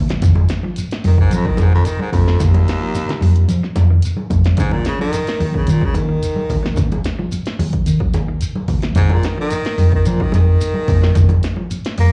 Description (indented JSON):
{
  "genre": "afrobeat",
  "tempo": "110 BPM",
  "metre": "4/4",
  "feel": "straight",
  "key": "Eb minor",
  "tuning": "A4 = 440 Hz",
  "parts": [
    { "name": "hollow-body short-scale fingered electric bass", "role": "bass", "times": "0.0-12.1 s", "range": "Eb2 to F3", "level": "-16 LUFS", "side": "equal", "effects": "none" },
    { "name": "semi-hollow electric guitar", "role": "arpeggios", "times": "0.1-12.1 s", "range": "Db3 to Gb3", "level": "-30 LUFS", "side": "equal", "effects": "analog chorus, slapback echo" },
    { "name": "punchy analog drum machine", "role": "drums", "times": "0.1-12.1 s", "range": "hi-hat, kick drum, snare drum", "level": "-24 LUFS", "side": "equal", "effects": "none" },
    { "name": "congas", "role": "percussion", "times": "0.2-12.1 s", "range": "none", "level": "-28 LUFS", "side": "equal", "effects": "slapback echo" },
    { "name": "shekere", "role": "percussion", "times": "0.2-12.1 s", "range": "none", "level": "-28 LUFS", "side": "equal", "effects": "slapback echo" },
    { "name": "warm baritone saxophone", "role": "melody", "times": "1.1-12.1 s", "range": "Eb2 to Bb3", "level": "-24 LUFS", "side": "equal", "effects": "slapback echo" }
  ],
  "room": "small room ambience",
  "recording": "live gig heard through the venue's PA, club reverb",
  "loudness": "-16 LUFS",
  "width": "mono",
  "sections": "0.0-12.1 A section",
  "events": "baritone saxophone solo 0.0-12.1",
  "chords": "0.2 Ebmadd9; 4.6 Ebm; 9.0 Gbmaj7(no3)/F"
}